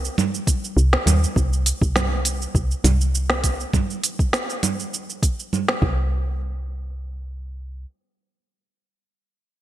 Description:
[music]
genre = organic downtempo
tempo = 101 BPM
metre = 4/4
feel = straight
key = C minor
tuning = A4 = 441 Hz
[part]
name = steel-string zither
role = arpeggios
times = 0.0-1.0 s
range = C4 to Bb4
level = -45 LUFS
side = right 2 dB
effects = none
[part]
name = woody FM bass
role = bass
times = 0.0-7.9 s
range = C2 to Eb2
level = -21 LUFS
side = equal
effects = sidechain pumping
[part]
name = organic electronic drum kit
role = drums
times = 0.0-5.8 s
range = cabasa, congas, hi-hat, snare drum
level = -23 LUFS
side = right 2 dB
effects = gated reverb
[part]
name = electronic kick drum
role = drums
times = 0.5-5.9 s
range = none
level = -21 LUFS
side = equal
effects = none
[sound]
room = light reverb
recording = bright 1980s-style digital production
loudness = -19 LUFS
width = side -13 dB against mid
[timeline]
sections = 0.0-6.1 A section; 6.1-8.5 B section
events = none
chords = 0.0 Cm7; 1.4 N.C.

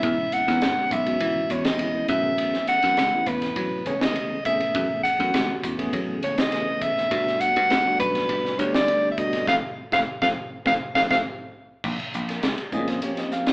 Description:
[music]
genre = electric jazz fusion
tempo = 102 BPM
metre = 4/4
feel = straight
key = F# dorian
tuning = A4 = 440 Hz
[part]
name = breathy soprano saxophone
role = melody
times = 0.0-11.2 s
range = B4 to F#5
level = -22 LUFS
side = equal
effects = none
[part]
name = bright tine electric piano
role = accompaniment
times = 0.0-13.5 s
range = D#3 to Gb5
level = -29 LUFS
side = equal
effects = medium stereo tremolo
[part]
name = dry thumbed slap bass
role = bass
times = 0.0-13.0 s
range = G#1 to G3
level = -29 LUFS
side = equal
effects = none
[part]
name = crisp fusion drum kit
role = drums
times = 0.0-13.5 s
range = crash cymbal, hi-hat, kick drum, ride cymbal, snare drum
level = -28 LUFS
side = equal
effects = none
[sound]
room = moderate large studio reverb, RT60 1.2 s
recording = band playing live in one room, AM radio sound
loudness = -21 LUFS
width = side -28 dB against mid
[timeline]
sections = 0.0-11.8 A section; 11.8-13.5 B section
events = drum fill 9.5-11.8; band accent 9.5-11.8; tine electric piano fill 10.7-11.8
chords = 0.0 C#m7; 2.1 F#m11; 7.1 Gmaj7; 9.5 F; 11.8 Bbm9

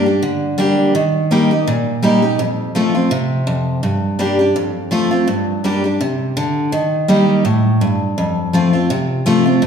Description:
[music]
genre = bluegrass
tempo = 166 BPM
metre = 4/4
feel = swing 55% on 8ths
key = unclear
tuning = A4 = 441 Hz
[part]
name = picked steel-string acoustic guitar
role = solo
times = 0.0-9.7 s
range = F2 to G4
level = -14 LUFS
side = equal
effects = none
[sound]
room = wet recital hall reverb, RT60 1.4 s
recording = recorded in a church or concert hall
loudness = -14 LUFS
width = side -7 dB against mid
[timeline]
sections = 0.0-9.7 A section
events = none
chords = 0.0 Gm; 0.9 Eb; 2.4 F; 3.8 Gm; 4.6 F; 5.3 Gm; 6.7 Eb; 8.2 F

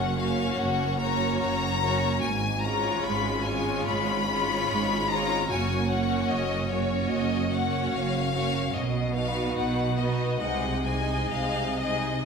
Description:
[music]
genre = classical, slow romantic movement for string orchestra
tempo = 73 BPM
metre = 4/4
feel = rubato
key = F# major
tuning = A4 = 439 Hz
[part]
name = clear chamber violin section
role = melody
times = 0.0-12.2 s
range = C#5 to B5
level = -30 LUFS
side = left 7 dB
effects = none
[part]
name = rich chamber violin section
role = second line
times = 0.0-12.2 s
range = E#4 to D#5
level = -31 LUFS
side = left 2 dB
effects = none
[part]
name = rich chamber viola section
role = accompaniment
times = 0.0-12.2 s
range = G#3 to D#4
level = -31 LUFS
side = right 4 dB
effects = none
[part]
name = dark chamber double bass section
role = bass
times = 0.0-12.2 s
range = Gb1 to B#1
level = -32 LUFS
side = right 3 dB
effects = none
[part]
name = rich chamber cello section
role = bass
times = 0.0-12.2 s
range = Gb2 to B#2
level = -32 LUFS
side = right 2 dB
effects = none
[sound]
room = moderate scoring stage reverb, RT60 1.6 s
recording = none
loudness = -24 LUFS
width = side -5 dB against mid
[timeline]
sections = 0.0-12.2 A section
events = none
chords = 0.0 Gb; 2.2 C#7/G#; 5.5 F#; 8.8 B; 10.4 G#/B#

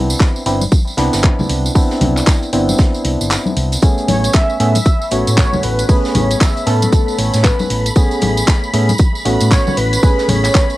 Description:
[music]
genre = deep house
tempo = 116 BPM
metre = 4/4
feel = swing 61% on 16ths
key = A major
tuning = A4 = 438 Hz
[part]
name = percussive organ stab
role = stabs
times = 0.0-10.8 s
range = A3 to A4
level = -19 LUFS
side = equal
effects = chorus, sidechain pumping, cassette tape
[part]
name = fingered electric bass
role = bass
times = 0.0-10.5 s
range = G1 to A2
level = -17 LUFS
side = equal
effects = tube saturation, sidechain pumping
[part]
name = tambourine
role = percussion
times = 0.1-10.8 s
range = none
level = -25 LUFS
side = right 2 dB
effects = none
[part]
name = electronic kick drum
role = drums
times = 0.2-10.7 s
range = none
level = -12 LUFS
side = equal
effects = cassette tape
[part]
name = house drum kit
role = drums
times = 0.2-10.7 s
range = handclaps, hi-hat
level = -22 LUFS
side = equal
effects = cassette tape
[part]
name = open jazz drum kit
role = drums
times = 0.2-10.8 s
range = hi-hat, snare drum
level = -30 LUFS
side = right 1 dB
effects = none
[part]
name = congas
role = percussion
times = 0.6-10.4 s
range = none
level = -21 LUFS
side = left 2 dB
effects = none
[part]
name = soft string machine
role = texture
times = 3.8-10.8 s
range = B5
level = -27 LUFS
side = equal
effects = ensemble chorus, sidechain pumping, cassette tape
[part]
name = warm velvety synth lead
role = melody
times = 4.1-10.8 s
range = A4 to E5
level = -20 LUFS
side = right 1 dB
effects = chorus, cassette tape, analog delay
[sound]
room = light reverb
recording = home recording on cassette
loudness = -12 LUFS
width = side -17 dB against mid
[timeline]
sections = 0.0-10.8 A section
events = kick drops out 3.3-3.8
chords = 0.0 Cmaj9; 3.8 Amaj9

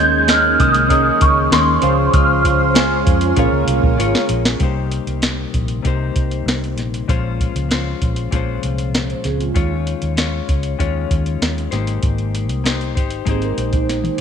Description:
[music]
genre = indie pop, bedroom pop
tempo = 97 BPM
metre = 4/4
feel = straight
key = unclear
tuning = A4 = 440 Hz
[part]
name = glockenspiel with rubber mallets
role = melody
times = 0.0-4.0 s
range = C6 to G6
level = -16 LUFS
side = right 1 dB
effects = ensemble chorus, tape echo
[part]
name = direct-recorded clean electric guitar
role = accompaniment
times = 0.0-14.2 s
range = Bb2 to Db5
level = -24 LUFS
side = left 12 dB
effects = wide subtle chorus, vibrato effect
[part]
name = soft electric-piano-like synth keys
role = accompaniment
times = 0.0-4.6 s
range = Db4 to Ab5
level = -22 LUFS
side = right 13 dB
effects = chorus
[part]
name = ensemble organ-string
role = sustained chords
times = 0.0-4.6 s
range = Db3 to C5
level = -21 LUFS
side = equal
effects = ensemble chorus
[part]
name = vintage muted fingered electric bass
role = bass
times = 0.0-14.1 s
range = Ab1 to F2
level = -21 LUFS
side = equal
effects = none
[part]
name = soft vintage rhythm box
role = drums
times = 0.3-14.2 s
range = hi-hat, kick drum, snare drum, toms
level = -19 LUFS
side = equal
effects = none
[part]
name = vibraphone with soft mallets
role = second line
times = 9.1-14.2 s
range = Ab3 to C5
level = -24 LUFS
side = right 13 dB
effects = wide subtle chorus, tape echo
[sound]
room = light reverb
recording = 1960s-style stereo with parts hard left and right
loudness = -15 LUFS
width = side -7 dB against mid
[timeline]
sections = 0.0-4.6 A section; 4.6-14.2 B section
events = drum fill 4.0-4.6, 13.9-14.2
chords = 0.0 Eb7sus4; 1.8 Dbmaj7; 3.4 Bbm7; 4.6 Cm7; 7.1 Bbm9; 9.6 Eb9sus4; 11.7 Abmaj9

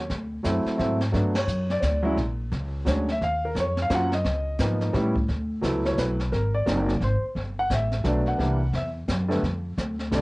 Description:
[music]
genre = jazz piano trio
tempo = 174 BPM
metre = 3/4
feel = swing 62% on 8ths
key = D major from 5.3 s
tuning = A4 = 440 Hz
[part]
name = warm concert grand piano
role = melody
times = 0.0-10.2 s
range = D3 to F#5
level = -26 LUFS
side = equal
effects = cassette tape
[part]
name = upright bass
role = bass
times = 0.0-10.2 s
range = F#1 to A2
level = -26 LUFS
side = equal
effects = none
[part]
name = jazz brush drum kit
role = drums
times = 0.1-10.2 s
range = brushed snare drum, hi-hat, kick drum, ride cymbal, snare drum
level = -32 LUFS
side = equal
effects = cassette tape
[sound]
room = moderate booth ambience, RT60 0.2 s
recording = home recording on cassette, nothing above 10.9 kHz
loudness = -23 LUFS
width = side -22 dB against mid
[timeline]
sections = 0.0-5.3 A section; 5.3-10.2 B section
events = band accent 1.3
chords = 0.1 D7; 1.1 Gmaj7(no3); 2.2 A#(#9); 3.2 D#m9; 4.2 C#13; 4.9 A7; 5.3 D6; 6.3 G#9; 7.4 Gmaj9; 8.4 C; 9.4 F5

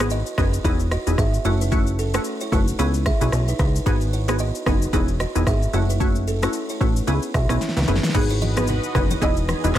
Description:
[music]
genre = afrobeats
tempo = 112 BPM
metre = 4/4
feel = swing 58% on 16ths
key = unclear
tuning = A4 = 439 Hz
[part]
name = glassy wavetable pluck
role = accompaniment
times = 0.0-9.8 s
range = A3 to G#4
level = -26 LUFS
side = left 1 dB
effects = chorus
[part]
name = plucky analog bass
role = bass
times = 0.0-9.8 s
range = E1 to C#2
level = -22 LUFS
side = equal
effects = none
[part]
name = deep house drum kit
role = drums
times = 0.0-9.8 s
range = crash cymbal, handclaps, kick drum, rim click, shaker, snare drum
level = -24 LUFS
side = equal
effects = none
[part]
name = buzzing kalimba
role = riff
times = 0.1-9.8 s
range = C#4 to E5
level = -28 LUFS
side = right 3 dB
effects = digital delay
[part]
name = lush unison pad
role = sustained chords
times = 8.1-9.8 s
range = E3 to D#5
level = -32 LUFS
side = right 1 dB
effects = chorus
[part]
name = congas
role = percussion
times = 8.1-9.7 s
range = none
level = -30 LUFS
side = left 2 dB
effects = none
[part]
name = folk marimba with medium hard mallets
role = melody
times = 8.2-9.6 s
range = G#4 to D#5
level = -29 LUFS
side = right 1 dB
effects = none
[sound]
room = digital ambience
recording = none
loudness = -18 LUFS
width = side -12 dB against mid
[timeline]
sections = 0.0-8.1 A section; 8.1-9.8 B section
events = drum fill 7.6-8.1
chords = 0.0 G#m7; 0.6 Emaj7; 1.5 F#m7; 2.8 C#m7; 3.9 G#m7; 4.9 Emaj7; 5.7 F#m7; 7.1 C#m7; 9.2 Emaj7

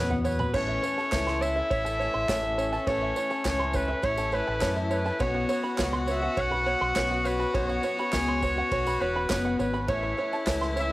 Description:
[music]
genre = indie folk with a building arrangement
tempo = 103 BPM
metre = 4/4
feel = straight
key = A major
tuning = A4 = 437 Hz
[part]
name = clear trumpet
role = melody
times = 0.0-10.9 s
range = B4 to F#5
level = -30 LUFS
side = equal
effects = analog delay
[part]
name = picked swing-style acoustic guitar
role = accompaniment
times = 0.0-10.9 s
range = A2 to A4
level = -33 LUFS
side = left 3 dB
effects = none
[part]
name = open-back banjo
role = arpeggios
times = 0.0-10.9 s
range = C#5 to C6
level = -31 LUFS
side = right 3 dB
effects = none
[part]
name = deep dub fingered electric bass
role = bass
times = 0.0-10.9 s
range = E1 to F#2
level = -32 LUFS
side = equal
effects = none
[part]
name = unplugged drum kit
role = drums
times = 0.1-10.7 s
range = crash cymbal, kick drum, ride cymbal, snare drum, toms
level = -35 LUFS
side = equal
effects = cassette tape
[part]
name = tambourine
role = percussion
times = 0.1-10.9 s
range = none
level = -46 LUFS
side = right 4 dB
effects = none
[part]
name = warm fiddle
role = second line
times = 0.5-10.9 s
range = C#4 to G#4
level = -33 LUFS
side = left 3 dB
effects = analog delay
[part]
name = group handclap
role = percussion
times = 1.1-10.6 s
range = none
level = -36 LUFS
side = right 3 dB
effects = none
[sound]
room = light reverb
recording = home recording on cassette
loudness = -24 LUFS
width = side -18 dB against mid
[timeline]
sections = 0.5-10.9 A section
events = none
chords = 0.0 Bsus2; 0.5 A; 5.2 Bsus2; 9.9 A

